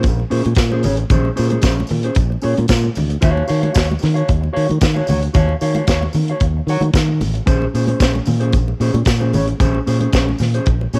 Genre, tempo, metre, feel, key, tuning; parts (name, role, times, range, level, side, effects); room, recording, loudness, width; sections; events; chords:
disco; 113 BPM; 4/4; straight; Bb minor; A4 = 439 Hz
mellow electric guitar; accompaniment; 0.0-11.0 s; Db4 to Gb5; -24 LUFS; equal; cassette tape
fingered electric bass; bass; 0.0-11.0 s; A1 to Eb3; -20 LUFS; equal
modern studio drum kit; drums; 0.0-11.0 s; hi-hat, kick drum, snare drum; -21 LUFS; equal; cassette tape
congas; percussion; 0.0-10.9 s; -28 LUFS; equal
tambourine; percussion; 0.1-11.0 s; -37 LUFS; equal
small room ambience; home recording on cassette; -17 LUFS; mono
0.0-11.0 A section
0.0 Bbm9; 3.2 Ebm9; 7.5 Bbm9